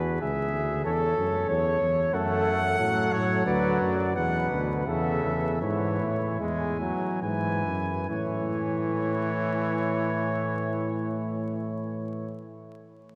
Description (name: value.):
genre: classical, imitative canzona for brass ensemble.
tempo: 66-94 BPM.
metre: 4/4.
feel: straight.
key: A major.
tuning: A4 = 440 Hz.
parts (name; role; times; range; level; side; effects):
mellow trumpet; melody; 0.0-12.5 s; B4 to G#5; -34 LUFS; equal; none.
mellow flugelhorn; second line; 0.0-12.5 s; E4 to C#5; -34 LUFS; equal; none.
mellow bass trombone; bass; 0.0-12.5 s; C#2 to A2; -32 LUFS; equal; none.
bright trombone; accompaniment; 2.1-12.5 s; B2 to A3; -33 LUFS; equal; none.
room: wet cathedral reverb, RT60 4.9 s.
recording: vinyl crackle.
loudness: -27 LUFS.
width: mono.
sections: 0.0-8.1 A section; 8.1-11.7 B section.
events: slowing down 0.9-8.1.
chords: 0.0 E; 0.9 A/E; 2.1 F#m; 3.5 Bm/D; 4.9 A/E; 6.4 E; 8.1 A.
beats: 0.22 0.85 1.49 | 2.13 2.79 3.46 4.16 | 4.87 5.62 6.40 7.22 | 8.09 8.99 9.90 10.80.